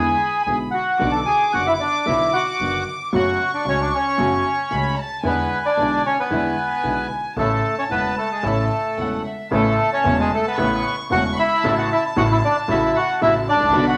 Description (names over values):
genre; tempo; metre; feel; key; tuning
tango; 113 BPM; 4/4; rubato; A major; A4 = 440 Hz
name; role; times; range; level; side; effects
bandoneon; melody; 0.0-14.0 s; G#3 to A5; -22 LUFS; equal; none
warm studio violin section; second line; 0.0-14.0 s; E5 to D6; -29 LUFS; equal; none
warm upright piano; accompaniment; 0.0-14.0 s; E1 to F#4; -27 LUFS; equal; none
upright bass; bass; 0.0-14.0 s; E1 to E2; -30 LUFS; equal; none
dark studio string section; stabs; 1.0-14.0 s; G#3 to F#4; -32 LUFS; equal; none
room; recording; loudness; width
wet large studio reverb, RT60 0.9 s; none; -20 LUFS; mono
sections
0.0-9.5 A section; 9.5-14.0 A section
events
none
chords
0.0 E7; 1.0 Bm; 3.1 F#m; 5.2 E7; 7.4 A; 9.5 Aadd9; 11.6 F#m7/A